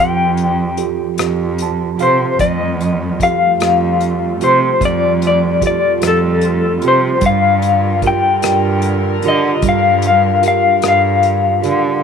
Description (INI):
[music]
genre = acoustic folk-pop ballad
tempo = 50 BPM (dotted quarters)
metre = 6/8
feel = straight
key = unclear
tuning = A4 = 440 Hz
[part]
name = electric guitar through a small old amp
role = melody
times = 0.0-12.0 s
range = A4 to G5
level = -14 LUFS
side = left 5 dB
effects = tremolo
[part]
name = tine electric piano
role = accompaniment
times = 0.0-12.0 s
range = F3 to A5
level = -19 LUFS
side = right 20 dB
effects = none
[part]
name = warm cello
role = bass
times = 0.0-12.0 s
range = F2 to D3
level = -18 LUFS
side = right 1 dB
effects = none
[part]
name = unplugged drum kit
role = drums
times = 0.4-11.8 s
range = hi-hat, kick drum, rim click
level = -22 LUFS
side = left 2 dB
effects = none
[part]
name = dark chamber string section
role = sustained chords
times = 2.4-12.0 s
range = D3 to Bb4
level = -25 LUFS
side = right 1 dB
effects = none
[sound]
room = light reverb, small room ambience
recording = 1960s-style stereo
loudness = -12 LUFS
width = side -6 dB against mid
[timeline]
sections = 0.0-2.4 A section; 2.4-12.0 A section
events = none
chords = 0.0 Fadd9; 7.2 Gm7